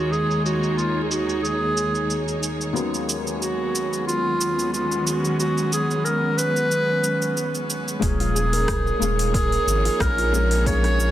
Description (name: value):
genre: organic downtempo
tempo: 91 BPM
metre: 4/4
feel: swing 54% on 16ths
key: unclear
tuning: A4 = 441 Hz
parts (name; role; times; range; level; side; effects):
- warm clarinet; melody; 0.0-11.1 s; F4 to Db5; -24 LUFS; right 1 dB; digital delay
- felt-muted upright piano; accompaniment; 0.0-11.1 s; D#2 to F5; -30 LUFS; left 6 dB; sidechain pumping, digital delay
- dark chamber string section; sustained chords; 0.0-11.1 s; Eb2 to Db5; -26 LUFS; equal; sidechain pumping, low-pass filter
- concert harp; arpeggios; 0.0, 8.0-11.1 s; Db4 to Db5; -29 LUFS; right 4 dB; none
- deep house drum kit; drums; 0.1-11.1 s; cabasa, hi-hat, rim click; -29 LUFS; right 2 dB; overdrive, low-pass filter on hats, low-pass filter on perc, low-pass filter on snare
- round analog bass; bass; 8.0-11.1 s; Eb1 to Bb1; -23 LUFS; equal; sidechain pumping
- electronic kick drum; drums; 8.0-10.8 s; none; -26 LUFS; equal; overdrive
room: moderate lush hall reverb, RT60 2.4 s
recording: dense, heavily limited modern master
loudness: -20 LUFS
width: side -12 dB against mid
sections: 0.0-8.0 A section; 8.0-11.1 B section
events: filter sweep on string section 0.0-8.0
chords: 0.0 Bbm7/Eb; 2.8 B/D#; 8.0 Bbm7/Eb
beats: | 0.11 0.77 1.43 2.09 | 2.75 3.41 4.07 4.73 | 5.39 6.05 6.71 7.37 | 8.03 8.68 9.34 10.00 | 10.66